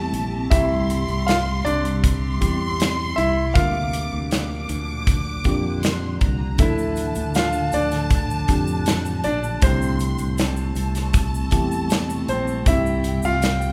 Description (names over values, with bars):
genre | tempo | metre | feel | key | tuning
pop ballad | 79 BPM | 4/4 | straight | D minor | A4 = 442 Hz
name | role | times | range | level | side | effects
warm studio violin section | second line | 0.0-13.7 s | G5 to D6 | -33 LUFS | equal | none
mellow tine electric piano | accompaniment | 0.0-13.7 s | G2 to Bb4 | -31 LUFS | equal | none
granular cloud pad | sustained chords | 0.0-13.7 s | A2 to G4 | -34 LUFS | equal | built-in reverb
fingered electric bass | bass | 0.0-13.7 s | Bb1 to F2 | -28 LUFS | equal | none
modern studio drum kit | drums | 0.1-13.6 s | hi-hat, kick drum, snare drum | -24 LUFS | equal | none
clear concert grand piano | melody | 0.5-13.7 s | C4 to F5 | -27 LUFS | equal | none
egg shaker | percussion | 6.6-13.7 s | none | -44 LUFS | equal | none
room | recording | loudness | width
moderate recital hall reverb, RT60 1.4 s | recorded in a church or concert hall | -21 LUFS | mono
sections
0.0-13.7 A section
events
none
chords
0.0 Am7; 0.5 C; 3.5 Bb; 6.6 Dm; 9.6 Am7/C; 12.7 C